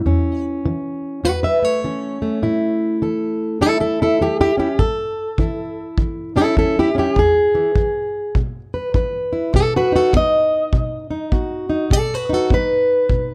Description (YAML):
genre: acoustic country blues, solo or duo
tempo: 101 BPM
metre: 4/4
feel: swing 63% on 8ths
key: unclear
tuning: A4 = 439 Hz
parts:
  - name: fingerpicked plugged-in steel-string acoustic guitar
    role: melody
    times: 0.0-13.3 s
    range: E2 to E5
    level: -19 LUFS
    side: equal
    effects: none
  - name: kick drum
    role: drums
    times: 4.8-13.3 s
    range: none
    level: -23 LUFS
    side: equal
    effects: none
room: light reverb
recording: none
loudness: -19 LUFS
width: mono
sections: 0.0-13.3 A section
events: steel-string acoustic guitar solo 0.0-13.3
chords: 0.0 A; 7.2 E; 9.5 B